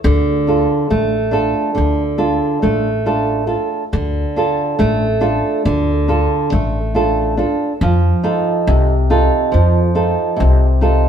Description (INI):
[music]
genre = greek folk, Greek bouzouki band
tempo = 139 BPM (eighths)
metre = 9/8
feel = straight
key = D minor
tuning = A4 = 439 Hz
[part]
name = flamenco guitar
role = accompaniment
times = 0.0-11.1 s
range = C3 to A4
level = -15 LUFS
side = right 2 dB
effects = none
[part]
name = upright bass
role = bass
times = 0.0-11.1 s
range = A1 to F2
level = -16 LUFS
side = left 1 dB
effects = none
[sound]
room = wet stone room reverb, RT60 1.1 s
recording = band playing live in one room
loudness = -13 LUFS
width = side -8 dB against mid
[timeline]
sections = 0.0-3.9 A section; 3.9-11.1 B section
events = none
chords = 0.0 Dm; 7.8 F7